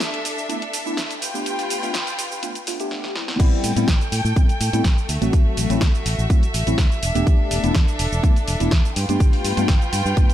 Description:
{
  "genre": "filtered disco house",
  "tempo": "124 BPM",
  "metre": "4/4",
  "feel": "straight",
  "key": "A minor",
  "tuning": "A4 = 442 Hz",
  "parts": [
    { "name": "warm studio violin section", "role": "sustained chords", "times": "0.0-10.3 s", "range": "A3 to G5", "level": "-27 LUFS", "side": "equal", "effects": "vintage 12-bit sampler grit, sidechain pumping" },
    { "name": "fingered electric bass", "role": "bass", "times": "0.0-10.3 s", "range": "E1 to A2", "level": "-24 LUFS", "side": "equal", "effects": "sidechain pumping, high-pass filter" },
    { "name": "house drum kit", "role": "drums", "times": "0.0-10.3 s", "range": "crash cymbal, hi-hat, shaker, snare drum", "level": "-26 LUFS", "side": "right 1 dB", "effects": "sidechain pumping on hats, studio reverb, sidechain pumping on perc, sidechain pumping on cymbals" },
    { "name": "mellow tine electric piano", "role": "accompaniment", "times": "0.5-10.3 s", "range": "F#3 to G4", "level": "-25 LUFS", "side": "left 1 dB", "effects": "phaser, sidechain pumping" },
    { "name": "electronic kick drum", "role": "drums", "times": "3.4-10.3 s", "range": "none", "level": "-17 LUFS", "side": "equal", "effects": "studio reverb" }
  ],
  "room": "digital ambience",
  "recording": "high-pass filter",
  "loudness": "-18 LUFS",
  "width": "side -12 dB against mid",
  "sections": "0.0-3.4 A section; 3.4-10.3 B section",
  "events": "build-up 0.0-3.4; filter sweep 0.0-3.4; drum fill 2.9-3.4; drop 3.4-10.3",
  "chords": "0.0 E7sus4; 1.2 G7; 3.4 Am7; 5.1 D9; 7.0 E7sus4; 9.0 G7"
}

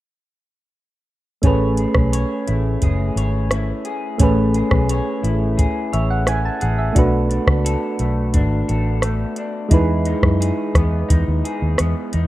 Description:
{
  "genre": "indie pop, bedroom pop",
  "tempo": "87 BPM",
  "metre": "4/4",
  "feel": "straight",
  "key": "unclear",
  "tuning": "A4 = 440 Hz",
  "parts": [
    { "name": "electric guitar through a small old amp", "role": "accompaniment", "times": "1.4-12.3 s", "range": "B2 to C#5", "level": "-26 LUFS", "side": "left 3 dB", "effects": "lush chorus, vibrato effect" },
    { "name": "soft electric-piano-like synth keys", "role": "accompaniment", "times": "1.4-12.3 s", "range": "G#3 to A5", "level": "-22 LUFS", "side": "right 2 dB", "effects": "chorus" },
    { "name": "vintage muted fingered electric bass", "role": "bass", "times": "1.4-12.3 s", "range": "F#1 to F#2", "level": "-19 LUFS", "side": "equal", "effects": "none" },
    { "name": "soft vintage rhythm box", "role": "drums", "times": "1.4-12.3 s", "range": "hi-hat, kick drum, rim click", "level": "-18 LUFS", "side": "equal", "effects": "none" }
  ],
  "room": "digital ambience",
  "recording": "rough home demo mix",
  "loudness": "-16 LUFS",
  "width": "side -16 dB against mid",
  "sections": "1.4-12.3 A section",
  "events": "none",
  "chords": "1.4 Amaj9; 7.0 Bm7; 9.7 Emaj7"
}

